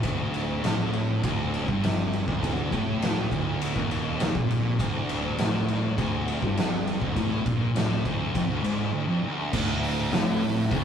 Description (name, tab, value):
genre	stoner and doom metal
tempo	101 BPM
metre	4/4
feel	straight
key	unclear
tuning	A4 = 440 Hz
part	string machine, violins	sustained chords	0.0-10.8 s	D3 to E4	-42 LUFS	right 1 dB	none
part	thick fuzz guitar	riff	0.0-10.8 s	D2 to Bb2	-30 LUFS	left 3 dB	distortion
part	thick fuzz guitar	riff	0.0-10.8 s	D2 to Bb2	-30 LUFS	right 4 dB	distortion
part	fuzz fingered electric bass	bass	0.0-10.8 s	D1 to Bb1	-36 LUFS	equal	none
part	oversized low-tuned drum kit	drums	0.0-10.8 s	crash cymbal, hi-hat, kick drum, ride cymbal, snare drum	-28 LUFS	equal	none
part	thick fuzz guitar	riff	9.5-10.8 s	D2 to A2	-30 LUFS	equal	distortion
room	moderate small room reverb, RT60 0.5 s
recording	rough rehearsal-room recording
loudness	-24 LUFS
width	side -8 dB against mid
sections	0.0-9.5 A section; 9.5-10.8 B section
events	none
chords	0.0 D5